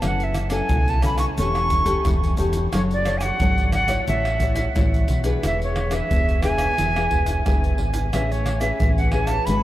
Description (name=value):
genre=samba and choro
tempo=89 BPM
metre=4/4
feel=straight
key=A major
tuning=A4 = 440 Hz
part: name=nylon-string guitar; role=accompaniment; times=0.0-9.6 s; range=B2 to C#5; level=-26 LUFS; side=left 2 dB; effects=none
part: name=deep dub fingered electric bass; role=bass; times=0.0-9.6 s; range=E1 to B1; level=-24 LUFS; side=equal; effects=none
part: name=egg shaker, surdo, pandeiro and tamborim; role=percussion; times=0.0-9.6 s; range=none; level=-23 LUFS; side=equal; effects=none
part: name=jazz flute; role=melody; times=0.1-9.6 s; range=C#5 to C#6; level=-24 LUFS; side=right 1 dB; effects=none
room=moderate huge ambient reverb, RT60 9.0 s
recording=in a vast, echoing space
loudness=-18 LUFS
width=side -14 dB against mid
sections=0.0-9.6 A section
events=none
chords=0.0 F#m7; 1.4 A7/E; 2.7 Dmaj7/F#; 4.1 A6; 5.4 E7; 8.1 Amaj9